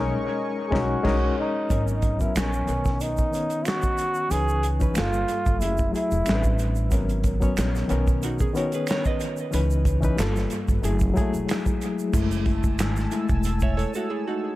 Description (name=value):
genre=R&B, neo-soul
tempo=92 BPM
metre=4/4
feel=straight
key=B major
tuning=A4 = 440 Hz
part: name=bright reed electric piano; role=accompaniment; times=0.0-14.6 s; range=D#3 to C#5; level=-27 LUFS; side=left 3 dB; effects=fast tremolo, dub echo
part: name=warm analog pad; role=sustained chords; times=0.0-1.7, 12.1-14.6 s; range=A#4 to E6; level=-36 LUFS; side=right 1 dB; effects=chorus
part: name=upright bass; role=bass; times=0.0-13.8 s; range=E1 to C#2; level=-26 LUFS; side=equal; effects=none
part: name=breathy trombone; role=melody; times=0.7-6.5 s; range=C#4 to G#4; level=-27 LUFS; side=right 1 dB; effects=dub echo
part: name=warm soul drum kit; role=drums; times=0.7-13.9 s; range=crash cymbal, handclaps, hi-hat, kick drum, snare drum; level=-26 LUFS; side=equal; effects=dub echo
part: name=egg shaker and finger snaps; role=percussion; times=1.7-14.1 s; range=none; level=-39 LUFS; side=right 5 dB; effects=dub echo
part: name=hollow-body jazz guitar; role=second line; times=8.2-9.5, 13.6-14.6 s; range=D#4 to E5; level=-31 LUFS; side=right 4 dB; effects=dub echo
room=studio reverb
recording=echo-heavy mix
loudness=-21 LUFS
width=side -16 dB against mid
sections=0.0-1.7 A section; 1.7-12.1 B section; 12.1-14.6 C section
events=band accent 0.0-1.7; reed electric piano solo 12.1-14.6; break 14.1-14.6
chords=0.0 Bmaj13; 1.7 G#m11; 2.7 Bmaj9; 4.3 C#m9; 5.0 Gm9; 5.6 F#m9; 6.3 Am11; 6.9 G#m11; 7.9 Bmaj9; 9.5 C#m9; 10.2 Gm9; 10.8 F#m9